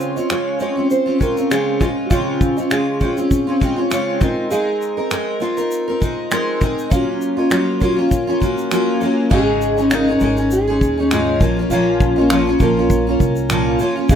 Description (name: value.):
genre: acoustic pop.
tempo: 100 BPM.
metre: 4/4.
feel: swing 55% on 16ths.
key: Db major.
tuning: A4 = 440 Hz.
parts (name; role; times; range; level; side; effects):
fingerpicked steel-string acoustic guitar; melody; 0.0-14.2 s; Db4 to Db5; -23 LUFS; right 2 dB; none.
picked steel-string acoustic guitar; accompaniment; 0.0-14.2 s; Ab2 to Bb4; -17 LUFS; left 1 dB; double-tracked left and right.
natural country drum kit; drums; 0.0-14.2 s; crash cymbal, finger snaps, kick drum, shaker; -20 LUFS; equal; none.
open-back banjo; arpeggios; 0.2-14.2 s; Bb4 to F5; -33 LUFS; right 6 dB; none.
upright bass; bass; 9.3-14.2 s; Ab1 to Eb2; -23 LUFS; equal; none.
room: light reverb, small room ambience.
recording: rough home demo mix.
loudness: -15 LUFS.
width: side -8 dB against mid.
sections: 0.0-9.3 A section; 9.3-14.2 B section.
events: none.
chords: 0.0 Dbmaj7; 4.2 Abadd9; 6.9 Gbmaj7; 9.3 Absus4; 11.4 Bbm.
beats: 0.31 0.91 1.51 | 2.11 2.71 3.31 3.91 | 4.51 5.12 5.72 6.32 | 6.92 7.52 8.12 8.71 | 9.31 9.91 10.51 11.11 | 11.71 12.30 12.90 13.50 | 14.09.